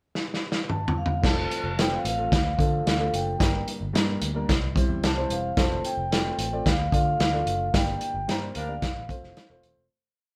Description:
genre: uptempo 1960s-style soul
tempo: 111 BPM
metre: 4/4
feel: straight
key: F major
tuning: A4 = 444 Hz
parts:
  - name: vintage drum kit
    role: drums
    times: 0.2-9.8 s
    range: crash cymbal, hi-hat, kick drum, snare drum, toms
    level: -28 LUFS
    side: equal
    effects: none
  - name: vibraphone with medium mallets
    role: melody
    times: 0.7-9.6 s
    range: F5 to Bb5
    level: -32 LUFS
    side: equal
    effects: none
  - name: dark upright piano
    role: accompaniment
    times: 1.2-9.8 s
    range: F3 to D5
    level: -34 LUFS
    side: equal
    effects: none
  - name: vintage muted picked electric bass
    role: bass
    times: 1.2-9.9 s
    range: Eb1 to D3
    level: -33 LUFS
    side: equal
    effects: none
  - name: clear horn section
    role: second line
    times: 8.6-8.7 s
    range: G3 to Bb4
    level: -40 LUFS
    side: equal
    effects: none
room: moderate studio reverb, RT60 0.8 s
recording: band playing live in one room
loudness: -25 LUFS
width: mono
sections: 0.0-1.2 pickup bar; 1.2-9.9 A section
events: drum fill 0.1-1.2; fade-out 7.7-9.9; band accent 7.7-9.9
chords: 0.0 N.C.; 1.2 F; 2.3 Dm; 3.4 Gm; 4.5 C; 5.6 F; 6.7 Dm; 7.7 Gm; 8.8 F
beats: 0.15 0.69 | 1.24 1.78 2.32 2.86 | 3.40 3.95 4.49 5.03 | 5.57 6.11 6.66 7.20 | 7.74 8.28 8.82 9.37

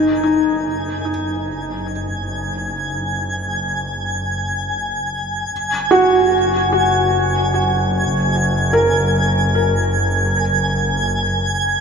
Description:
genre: ambient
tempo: free time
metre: none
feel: none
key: Gb major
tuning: A4 = 440 Hz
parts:
  - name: felt-muted upright piano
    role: arpeggios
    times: 0.0-11.8 s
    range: Eb4 to Bb4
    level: -18 LUFS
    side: equal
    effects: ping-pong delay
  - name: warm chamber double bass section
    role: bass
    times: 0.0-11.8 s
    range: Gb1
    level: -22 LUFS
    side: equal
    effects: none
  - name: twinkling granular texture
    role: texture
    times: 0.0-11.8 s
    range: Ab5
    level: -21 LUFS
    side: right 1 dB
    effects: built-in reverb
room: wet huge ambient reverb, RT60 7.4 s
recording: none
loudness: -16 LUFS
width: side -6 dB against mid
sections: 0.0-11.8 A section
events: fade-in on double bass section 0.0-11.8; fade-in on synth texture 0.0-11.8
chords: 0.0 Ebmadd11/Gb; 5.5 Gbadd9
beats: free time

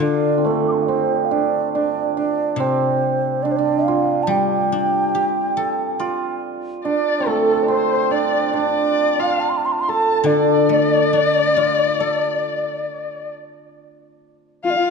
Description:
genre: chinese traditional, Chinese chamber ensemble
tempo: 70 BPM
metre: 4/4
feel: straight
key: D yu mode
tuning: A4 = 444 Hz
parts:
  - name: mellow hollow xiao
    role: melody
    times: 0.0-14.9 s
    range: A4 to D6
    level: -21 LUFS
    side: equal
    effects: none
  - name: hammered dulcimer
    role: second line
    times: 0.0-14.0 s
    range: A3 to A4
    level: -21 LUFS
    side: right 7 dB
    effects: none
  - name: guzheng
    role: accompaniment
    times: 0.0-13.8 s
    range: C3 to D5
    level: -23 LUFS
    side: left 7 dB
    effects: none
  - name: dark erhu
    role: second line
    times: 6.8-14.9 s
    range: A4 to C6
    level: -22 LUFS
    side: left 6 dB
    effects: none
  - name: warm horsehead fiddle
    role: second line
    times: 14.6-14.9 s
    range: F4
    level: -20 LUFS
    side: left 6 dB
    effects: none
room: moderate concert hall reverb, RT60 2.3 s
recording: dark, warm production, nothing above 10.7 kHz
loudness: -16 LUFS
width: side -5 dB against mid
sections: 0.0-13.8 A section; 13.8-14.9 B section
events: none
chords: none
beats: | 0.01 0.87 1.73 2.59 | 3.45 4.30 5.15 6.00 | 6.84 7.69 8.54 9.40 | 10.26 11.13 12.01 12.89 | 13.77 14.64

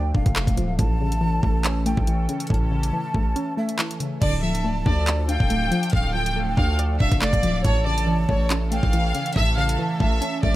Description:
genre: hip hop, drill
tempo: 140 BPM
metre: 4/4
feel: half-time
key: D harmonic minor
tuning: A4 = 445 Hz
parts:
  - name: breathy mellow jazz flute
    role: second line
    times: 0.0-10.6 s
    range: E5 to A5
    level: -31 LUFS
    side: right 1 dB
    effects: digital delay
  - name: glassy wavetable pluck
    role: accompaniment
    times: 0.0-10.6 s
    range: A2 to D5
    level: -27 LUFS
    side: equal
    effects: chorus
  - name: sweeping resonant pad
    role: sustained chords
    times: 0.0-10.6 s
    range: E3 to A4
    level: -33 LUFS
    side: equal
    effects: chorus
  - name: hard-hitting 808-style bass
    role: bass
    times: 0.0-10.5 s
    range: D1 to D2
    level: -24 LUFS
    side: equal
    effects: none
  - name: drill drum kit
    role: drums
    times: 0.1-10.5 s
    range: crash cymbal, handclaps, hi-hat, kick drum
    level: -23 LUFS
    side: equal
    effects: overdrive
  - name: warm studio violin section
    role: melody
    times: 4.2-10.6 s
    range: C#5 to G5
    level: -26 LUFS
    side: equal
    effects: digital delay
room: little or no reverb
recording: vinyl crackle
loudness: -20 LUFS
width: side -16 dB against mid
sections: 0.0-4.2 A section; 4.2-10.6 B section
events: break 0.0-4.2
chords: 0.0 Dm; 0.8 A; 4.2 Dm; 7.6 A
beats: 0.36 | 0.79 1.22 1.65 2.07 | 2.50 2.93 3.36 3.79 | 4.22 4.64 5.07 5.50 | 5.93 6.36 6.79 7.22 | 7.64 8.07 8.50 8.93 | 9.36 9.79 10.22

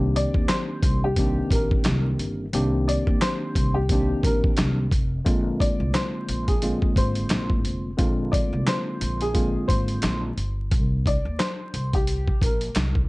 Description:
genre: hip hop, boom-bap hip-hop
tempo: 88 BPM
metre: 4/4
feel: swing 57% on 16ths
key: unclear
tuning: A4 = 439 Hz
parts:
  - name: mellow tine electric piano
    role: accompaniment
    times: 0.0-10.3 s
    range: D3 to G4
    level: -27 LUFS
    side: equal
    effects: medium stereo tremolo, cassette tape, high-pass filter, low-pass filter
  - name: upright bass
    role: bass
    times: 0.0-13.0 s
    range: F1 to Eb2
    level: -26 LUFS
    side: equal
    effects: none
  - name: dark upright piano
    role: melody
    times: 0.2-12.9 s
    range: G4 to D5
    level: -29 LUFS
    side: left 1 dB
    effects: high-pass filter, low-pass filter, analog delay
  - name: boom bap sampler-style drum kit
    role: drums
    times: 0.2-13.1 s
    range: handclaps, hi-hat, kick drum, snare drum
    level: -24 LUFS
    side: equal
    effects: none
room: little or no reverb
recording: dry, gritty hardware recording, vinyl crackle, nothing above 10.7 kHz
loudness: -21 LUFS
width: side -22 dB against mid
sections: 0.0-5.3 A section; 5.3-13.1 B section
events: none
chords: 0.0 Cm9; 5.3 Bb9; 10.7 C7(no3)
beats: 0.49 1.17 1.85 | 2.53 3.21 3.90 4.58 | 5.26 5.94 6.62 7.30 | 7.99 8.67 9.35 10.03 | 10.71 11.39 12.08 12.76

